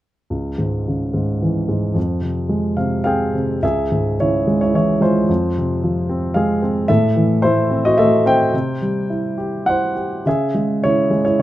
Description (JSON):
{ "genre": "classical, lyrical solo piano", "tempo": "101-114 BPM", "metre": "3/4", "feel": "rubato", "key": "C# harmonic minor", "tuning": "A4 = 441 Hz", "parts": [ { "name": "dark grand piano", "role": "solo", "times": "0.3-11.4 s", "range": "C#2 to G5", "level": "-16 LUFS", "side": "equal", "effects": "none" } ], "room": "light reverb", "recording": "close, detailed microphones", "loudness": "-16 LUFS", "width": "side -14 dB against mid", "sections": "0.3-3.6 A section; 3.6-11.4 B section", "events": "grand piano fill 2.5-3.6", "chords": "0.3 C#m; 2.0 Fmadd9; 3.6 C#m; 5.3 Fm; 6.9 Am; 8.5 C; 10.3 C#m" }